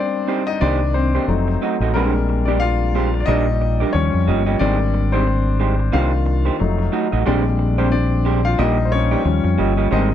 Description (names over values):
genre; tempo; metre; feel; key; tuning
soul; 90 BPM; 4/4; swing 58% on 16ths; Eb major; A4 = 441 Hz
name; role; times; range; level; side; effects
warm concert grand piano; accompaniment; 0.0-10.1 s; Eb3 to F5; -20 LUFS; left 6 dB; none
electric guitar through a small old amp; riff; 0.3-10.1 s; Ab3 to Eb5; -24 LUFS; right 8 dB; none
fingered electric bass; bass; 0.6-10.1 s; F1 to F2; -19 LUFS; equal; none
room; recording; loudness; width
studio ambience; dark, warm production; -16 LUFS; side -10 dB against mid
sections
0.0-10.1 A section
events
grand piano solo 0.0-10.1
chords
0.0 Abmaj7 (rootless); 0.6 Cm7; 1.3 F7b9; 1.9 Bb13; 3.3 Ebmaj7/Bb; 3.9 Eb9; 4.6 Abmaj7; 5.9 Cm7; 6.6 F7b9; 7.3 Bb13; 8.6 Ebmaj7/Bb; 9.3 Eb9